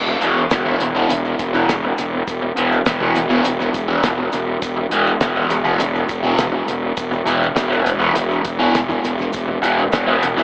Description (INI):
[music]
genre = psychedelic rock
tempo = 102 BPM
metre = 4/4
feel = straight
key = unclear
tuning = A4 = 441 Hz
[part]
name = fuzz fingered electric bass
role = bass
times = 0.0-10.4 s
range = E1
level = -24 LUFS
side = equal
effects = overdrive
[part]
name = fuzz guitar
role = riff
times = 0.1-10.4 s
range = E2 to E3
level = -21 LUFS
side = equal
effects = distortion, phaser, tape echo
[part]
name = cloth-damped thuddy drum kit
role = drums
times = 0.2-10.4 s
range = hi-hat, kick drum, snare drum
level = -26 LUFS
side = equal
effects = tape echo
[part]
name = maracas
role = percussion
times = 0.2-10.4 s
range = none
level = -40 LUFS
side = equal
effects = none
[sound]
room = moderate spring reverb, RT60 2.3 s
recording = echo-heavy mix, AM radio sound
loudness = -18 LUFS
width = mono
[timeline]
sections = 0.0-10.4 A section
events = none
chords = 0.0 E5